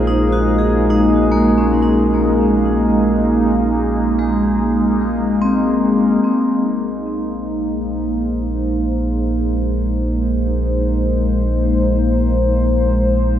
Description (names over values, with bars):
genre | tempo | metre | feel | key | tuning
ambient | free time | none | none | Bb minor | A4 = 440 Hz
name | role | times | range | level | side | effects
warbly tape-like pad | sustained chords | 0.0-13.4 s | Ab3 to C5 | -17 LUFS | left 1 dB | chorus, built-in reverb, phaser
vibraphone with medium hard mallets | arpeggios | 0.0-6.6 s | Ab3 to Ab4 | -18 LUFS | equal | analog delay
warm sub bass | bass | 0.0-13.4 s | Bb1 | -20 LUFS | equal | tube saturation
room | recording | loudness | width
moderate spring reverb, RT60 2.7 s | echo-heavy mix | -14 LUFS | side -10 dB against mid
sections
0.0-6.2 A section; 6.2-13.4 B section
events
none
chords
0.0 Gbsus2/Bb; 6.2 Bb9sus4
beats
free time